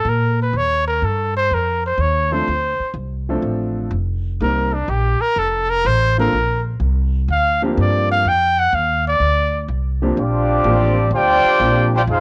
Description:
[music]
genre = jazz, big band swing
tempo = 125 BPM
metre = 4/4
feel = swing 68% on 8ths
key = Bb major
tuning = A4 = 440 Hz
[part]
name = clear trumpet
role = melody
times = 0.0-9.7 s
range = D4 to G5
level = -20 LUFS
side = equal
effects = cassette tape, plate reverb
[part]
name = upright bass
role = bass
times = 0.0-12.2 s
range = F1 to Bb2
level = -22 LUFS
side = equal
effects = transformer saturation
[part]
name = warm grand piano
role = accompaniment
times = 2.3-11.9 s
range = F3 to Bb4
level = -24 LUFS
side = equal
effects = plate reverb
[part]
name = mellow trumpet section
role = melody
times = 10.2-12.2 s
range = C4 to G5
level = -18 LUFS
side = equal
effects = cassette tape, plate reverb
[part]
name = clear trombone section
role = second line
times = 10.2-12.2 s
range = F3 to G4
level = -25 LUFS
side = equal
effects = plate reverb
[sound]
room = moderate booth ambience, RT60 0.2 s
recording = home recording on cassette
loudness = -18 LUFS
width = mono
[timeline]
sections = 0.0-10.2 A section; 10.2-12.2 B section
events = trumpet solo 0.0-10.2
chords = 0.0 N.C.; 0.5 Eb69; 2.5 Dm7; 4.4 Cm7; 5.4 F; 6.3 Bb69

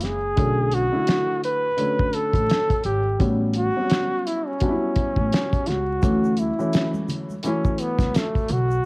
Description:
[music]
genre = hip hop, jazz-hop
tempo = 85 BPM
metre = 4/4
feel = swing 59% on 16ths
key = unclear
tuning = A4 = 440 Hz
[part]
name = clear trombone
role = melody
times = 0.0-8.9 s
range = A3 to B4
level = -24 LUFS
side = equal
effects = cassette tape
[part]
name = dark upright piano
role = accompaniment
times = 0.0-8.6 s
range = D3 to E4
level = -27 LUFS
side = left 1 dB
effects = cassette tape
[part]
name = upright bass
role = bass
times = 0.0-8.8 s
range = F#1 to D2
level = -24 LUFS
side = equal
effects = none
[part]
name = cloth-damped thuddy drum kit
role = drums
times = 0.0-8.7 s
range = hi-hat, kick drum, snare drum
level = -23 LUFS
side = equal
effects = cassette tape
[part]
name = tube shaker and congas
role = percussion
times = 6.0-8.8 s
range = none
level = -33 LUFS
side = right 1 dB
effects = none
[sound]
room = light reverb, studio reverb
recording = home recording on cassette, vinyl crackle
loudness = -19 LUFS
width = side -27 dB against mid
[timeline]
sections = 0.0-8.9 A section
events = none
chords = 0.4 Bm7; 3.2 A13; 6.0 Dmaj7

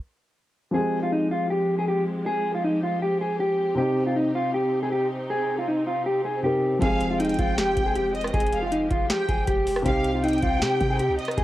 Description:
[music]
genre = hip hop, trap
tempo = 158 BPM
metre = 4/4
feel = half-time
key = F minor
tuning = A4 = 440 Hz
[part]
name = mellow electric guitar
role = melody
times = 0.7-11.4 s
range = Eb4 to Ab4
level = -24 LUFS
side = equal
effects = cassette tape
[part]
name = dark concert grand piano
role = accompaniment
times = 0.7-11.4 s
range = C3 to Bb4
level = -29 LUFS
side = left 1 dB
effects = cassette tape
[part]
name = dark symphonic string section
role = sustained chords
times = 0.7-11.4 s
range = C3 to G4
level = -34 LUFS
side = equal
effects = cassette tape
[part]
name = warm studio violin section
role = second line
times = 6.8-11.4 s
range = Eb5 to G5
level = -30 LUFS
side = equal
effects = cassette tape, tape echo
[part]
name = warm 808-style bass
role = bass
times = 6.8-11.4 s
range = F1 to C3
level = -32 LUFS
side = equal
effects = none
[part]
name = booming analog drum machine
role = drums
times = 6.8-11.4 s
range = hi-hat, kick drum, rim click, snare drum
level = -27 LUFS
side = equal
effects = cassette tape
[sound]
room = little or no reverb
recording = home recording on cassette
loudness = -22 LUFS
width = side -14 dB against mid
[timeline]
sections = 0.7-11.4 A section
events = break 0.0-0.7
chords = 0.0 N.C.; 0.7 Fmadd9; 3.8 Cm; 6.8 Fmadd9; 9.9 Cm

